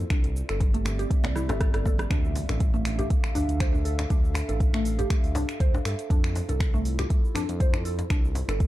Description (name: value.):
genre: afro house.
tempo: 120 BPM.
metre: 4/4.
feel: swing 54% on 16ths.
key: D minor.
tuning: A4 = 440 Hz.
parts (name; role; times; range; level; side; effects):
dark analog pad; sustained chords; 0.0-8.7 s; C4 to F5; -37 LUFS; right 1 dB; chorus, phaser, sidechain pumping.
smooth synth bass; bass; 0.0-8.7 s; G1 to G2; -29 LUFS; equal; sidechain pumping.
afro-pop drum kit; drums; 0.0-8.7 s; finger snaps, hi-hat, rim click, shaker; -36 LUFS; right 1 dB; overdrive.
mallet-like synth pluck; arpeggios; 0.1-8.6 s; A3 to C5; -33 LUFS; equal; lush chorus, sidechain pumping, tape echo.
electronic kick drum; drums; 0.1-8.7 s; none; -23 LUFS; equal; overdrive.
djembe; percussion; 0.2-8.6 s; none; -35 LUFS; left 2 dB; none.
congas; percussion; 0.6-2.1 s; none; -38 LUFS; right 4 dB; none.
impact; sound effects; 2.2-4.1 s; none; -35 LUFS; equal; none.
room: little or no reverb.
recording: dark, warm production.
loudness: -23 LUFS.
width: side -15 dB against mid.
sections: 0.0-2.1 A section; 2.1-8.7 B section.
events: drum fill 1.4-2.1; drop 2.1-8.7; impact 2.1-4.1.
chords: 0.1 C; 2.1 Dmadd9; 6.1 Fmaj7; 8.1 C.